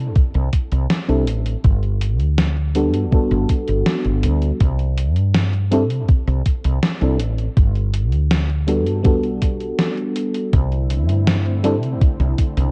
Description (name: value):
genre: vaporwave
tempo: 81 BPM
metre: 4/4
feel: straight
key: C lydian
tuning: A4 = 440 Hz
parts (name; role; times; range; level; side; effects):
- woody fretless electric bass; bass; 0.0-12.7 s; G1 to C3; -21 LUFS; equal; none
- electronic kick drum; drums; 0.2-12.5 s; none; -18 LUFS; equal; vintage 12-bit sampler grit
- gated 80s digital drum machine; drums; 0.2-12.7 s; hi-hat, snare drum; -24 LUFS; equal; gated reverb, gated reverb snare, vintage 12-bit sampler grit
- mellow FM electric piano; accompaniment; 1.1-11.8 s; G3 to A4; -23 LUFS; equal; lush chorus, tape echo
- lush unison pad; sustained chords; 10.5-12.7 s; D3 to E4; -30 LUFS; equal; chorus, vintage 12-bit sampler grit
room: little or no reverb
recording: dark, warm production, cassette tape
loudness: -19 LUFS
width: mono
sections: 0.0-12.7 A section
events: none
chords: 0.0 C5; 1.6 Gmaj9; 4.6 C5; 7.6 Gmaj9; 10.5 C69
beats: 0.16 0.90 | 1.65 2.38 3.13 3.87 | 4.61 5.35 6.09 6.83 | 7.57 8.31 9.05 9.79 | 10.53 11.27 12.02